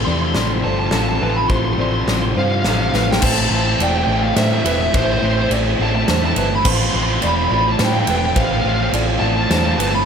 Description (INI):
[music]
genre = post-rock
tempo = 105 BPM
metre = 3/4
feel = straight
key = A minor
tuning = A4 = 440 Hz
[part]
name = smooth overdriven lead guitar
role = melody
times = 0.0-10.1 s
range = C5 to C6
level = -21 LUFS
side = right 1 dB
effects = ping-pong delay
[part]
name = soft additive organ-like pad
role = sustained chords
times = 0.0-3.2 s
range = C4 to A4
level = -34 LUFS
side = left 1 dB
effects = none
[part]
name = felt-muted upright piano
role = arpeggios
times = 0.0-10.1 s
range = B4 to D5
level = -27 LUFS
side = right 3 dB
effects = ping-pong delay
[part]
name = twelve-string electric guitar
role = arpeggios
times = 0.0-3.2 s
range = A2 to C5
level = -29 LUFS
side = left 3 dB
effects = none
[part]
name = crunchy overdriven guitar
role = riff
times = 0.0-10.1 s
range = F2 to F4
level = -24 LUFS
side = right 10 dB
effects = none
[part]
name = distorted electric guitar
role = riff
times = 0.0-10.1 s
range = F2 to F4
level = -23 LUFS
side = left 10 dB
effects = distortion
[part]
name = hollow-body short-scale fingered electric bass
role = bass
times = 0.0-10.0 s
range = E1 to A2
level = -21 LUFS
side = equal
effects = none
[part]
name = huge arena drum kit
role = drums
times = 0.3-9.9 s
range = crash cymbal, kick drum, ride cymbal, snare drum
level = -21 LUFS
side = equal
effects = none
[sound]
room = moderate plate reverb, RT60 3.5 s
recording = dreamy mix soaked in reverb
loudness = -15 LUFS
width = side -7 dB against mid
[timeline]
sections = 0.0-3.2 A section; 3.2-10.1 B section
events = build-up 0.0-3.2; drum fill 2.9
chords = 0.0 F; 3.2 Amadd9; 6.7 F